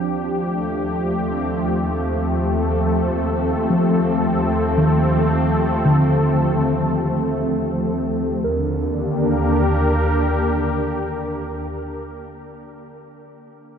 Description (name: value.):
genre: ambient.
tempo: free time.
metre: none.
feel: none.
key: Eb lydian.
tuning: A4 = 440 Hz.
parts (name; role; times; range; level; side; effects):
warm analog pad; sustained chords; 0.0-12.1 s; D3 to Bb4; -20 LUFS; equal; chorus.
muted felt-like synth keys; arpeggios; 0.0-13.8 s; D3 to G5; -23 LUFS; left 1 dB; chorus, ping-pong delay.
warm symphonic double bass section; bass; 0.0-11.6 s; Eb2; -25 LUFS; equal; none.
room: wet huge ambient reverb, RT60 7.5 s.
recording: none.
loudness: -17 LUFS.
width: side -7 dB against mid.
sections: 0.0-8.4 A section; 8.4-12.7 B section.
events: none.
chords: 0.0 Fadd9/Eb; 8.4 Ebmaj7.